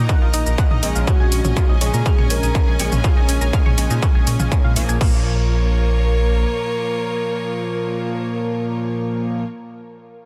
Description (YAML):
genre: melodic techno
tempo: 122 BPM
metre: 4/4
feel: straight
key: Bb minor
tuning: A4 = 440 Hz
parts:
  - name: bright studio string section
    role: sustained chords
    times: 0.0-9.4 s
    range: Bb3 to Bb5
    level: -32 LUFS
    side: equal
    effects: sidechain pumping
  - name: tight sequenced synth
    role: arpeggios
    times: 0.0-5.2 s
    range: Bb3 to Gb6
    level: -32 LUFS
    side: equal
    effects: chorus, phaser, sidechain pumping, delay
  - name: sync-sweep polysynth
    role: stabs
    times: 0.0-9.4 s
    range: Bb2 to Eb4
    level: -28 LUFS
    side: equal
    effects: chorus, sidechain pumping, delay
  - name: dark detuned saw bass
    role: bass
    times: 0.0-6.4 s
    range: Bb1 to Bb2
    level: -22 LUFS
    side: equal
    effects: sidechain pumping
  - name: electronic kick drum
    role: drums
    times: 0.1-5.1 s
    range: none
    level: -19 LUFS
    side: equal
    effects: distortion, overdrive
  - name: punchy analog drum machine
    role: drums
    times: 0.1-5.1 s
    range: crash cymbal, hi-hat, shaker, toms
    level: -28 LUFS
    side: equal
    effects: sidechain pumping on perc, sidechain pumping on hats, sidechain pumping on toms, sidechain pumping on cymbals
  - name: expressive synth lead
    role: melody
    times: 1.1-9.4 s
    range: Gb4 to Bb4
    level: -30 LUFS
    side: equal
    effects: chorus, dub echo
room: digital ambience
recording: dense, heavily limited modern master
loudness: -19 LUFS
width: mono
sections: 0.0-5.0 A section; 5.0-8.9 B section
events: drop 0.0-5.0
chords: 0.0 Ebm/Bb; 1.1 Dbsus4/Bb; 5.0 Bbm